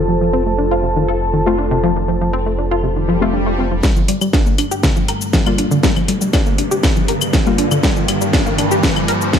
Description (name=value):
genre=melodic techno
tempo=120 BPM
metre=4/4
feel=straight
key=G minor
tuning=A4 = 440 Hz
part: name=dark analog pad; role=sustained chords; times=0.0-9.4 s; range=G3 to A5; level=-22 LUFS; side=right 1 dB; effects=chorus, sidechain pumping
part: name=tight sequenced synth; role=arpeggios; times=0.0-9.4 s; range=C3 to Bb4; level=-19 LUFS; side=left 1 dB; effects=chorus, sidechain pumping, ping-pong delay
part: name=synth brass stab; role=stabs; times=0.0-9.4 s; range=G3 to F4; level=-22 LUFS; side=left 4 dB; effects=chorus, sidechain pumping, ping-pong delay
part: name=round analog bass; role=bass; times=0.0-3.8 s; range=F1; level=-21 LUFS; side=equal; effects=sidechain pumping
part: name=swell and riser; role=sound effects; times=3.0-9.4 s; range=none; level=-24 LUFS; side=equal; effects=none
part: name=overtone-sweeping drone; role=drone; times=4.7-9.4 s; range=G2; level=-25 LUFS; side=equal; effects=chorus, built-in reverb, sidechain pumping
part: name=electronic kick drum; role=drums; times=3.8-9.4 s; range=none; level=-16 LUFS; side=equal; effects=distortion
part: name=techno drum kit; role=drums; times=3.8-9.4 s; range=claves, hi-hat, shaker, snare drum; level=-20 LUFS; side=left 1 dB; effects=none
room=light reverb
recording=none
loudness=-13 LUFS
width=side -8 dB against mid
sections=0.0-3.8 A section; 3.8-9.4 B section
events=swell 3.0-3.8; build-up 3.8-9.4; drum fill 3.8-9.4; riser 3.8-9.4; filter sweep on analog synth pad 3.8-9.4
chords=0.0 F; 3.8 Gm7